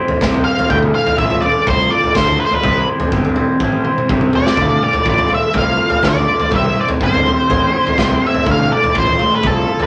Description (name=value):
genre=psychedelic rock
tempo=124 BPM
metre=4/4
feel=straight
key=D minor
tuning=A4 = 439 Hz
part: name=electric guitar through a small old amp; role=riff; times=0.0-9.9 s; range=D2 to C5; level=-21 LUFS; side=equal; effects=phaser
part: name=raw garage drum kit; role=drums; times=0.1-9.9 s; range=kick drum, snare drum, toms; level=-20 LUFS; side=equal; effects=none
part: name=fuzz fingered electric bass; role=bass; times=0.2-9.6 s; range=G1 to D2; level=-23 LUFS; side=equal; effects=overdrive
part: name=octave-fuzz lead guitar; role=melody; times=0.4-9.9 s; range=A4 to G5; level=-18 LUFS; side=equal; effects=distortion
room=wet club ambience, RT60 0.5 s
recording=none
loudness=-15 LUFS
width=mono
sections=0.0-9.9 A section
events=drum fill 3.6-4.6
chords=0.0 C; 0.7 Dm; 2.6 C; 4.6 Dm; 6.5 C; 8.5 Dm